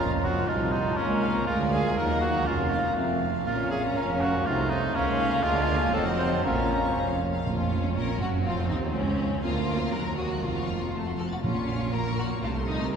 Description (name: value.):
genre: quick classical-period movement for symphony orchestra.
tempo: 121 BPM.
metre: 2/4.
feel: straight.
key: Bb minor.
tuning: A4 = 441 Hz.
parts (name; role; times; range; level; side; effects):
warm studio violin section; melody; 0.0-13.0 s; Db4 to A6; -40 LUFS; left 2 dB; none.
clear clarinet; second line; 0.0-7.2 s; Bb3 to F4; -35 LUFS; left 1 dB; none.
large flute ensemble; second line; 0.0-7.2 s; Db5 to Bb5; -37 LUFS; left 2 dB; none.
rich studio violin section; second line; 0.0-13.0 s; A3 to Db6; -34 LUFS; left 2 dB; none.
warm cor anglais; second line; 0.0-6.9 s; Db4 to C5; -31 LUFS; right 2 dB; none.
rich chamber viola section; accompaniment; 0.0-13.0 s; F3 to Db4; -34 LUFS; equal; none.
warm bassoon; accompaniment; 0.0-7.2 s; F3 to Eb4; -32 LUFS; right 1 dB; none.
rich chamber double bass section; bass; 0.0-13.0 s; F1 to Eb2; -32 LUFS; right 2 dB; none.
warm chamber cello section; bass; 0.0-13.0 s; C2 to D3; -31 LUFS; right 2 dB; none.
timpani; percussion; 0.0-0.2, 7.5-8.2, 10.4-12.1 s; F2 to Bb2; -36 LUFS; right 1 dB; none.
room: wet cathedral reverb, RT60 5.7 s.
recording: minimal, uncompressed stereo recording.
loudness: -24 LUFS.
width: side -7 dB against mid.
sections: 0.0-7.5 A section; 7.5-13.0 A section.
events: none.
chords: 0.5 F7/C; 1.0 Bbm/Db; 1.5 Bb7/D; 2.0 Ebm; 2.5 Bbm/F; 3.0 F; 3.5 Bbm; 4.5 F7/C; 5.0 Bbm/Db; 5.4 Bb7/D; 5.9 F7b9; 6.4 Bbm; 7.5 Bbm/F; 8.5 F5; 8.9 N.C.; 9.4 Bb7/D; 9.9 Ebm; 10.4 Bbm/F; 10.9 F; 11.4 Bbm; 12.4 F7/C.